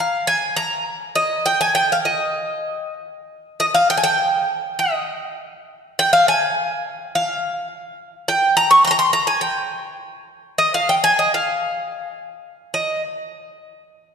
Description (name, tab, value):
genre	fado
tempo	101 BPM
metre	4/4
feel	uneven beats, rubato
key	unclear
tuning	A4 = 440 Hz
part	Greek bouzouki	solo	0.0-13.0 s	Eb5 to Db6	-17 LUFS	equal	none
room	wet concert hall reverb, RT60 2.4 s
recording	recorded in a church or concert hall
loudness	-17 LUFS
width	side -6 dB against mid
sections	0.0-12.7 A section; 12.7-14.1 B section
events	none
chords	none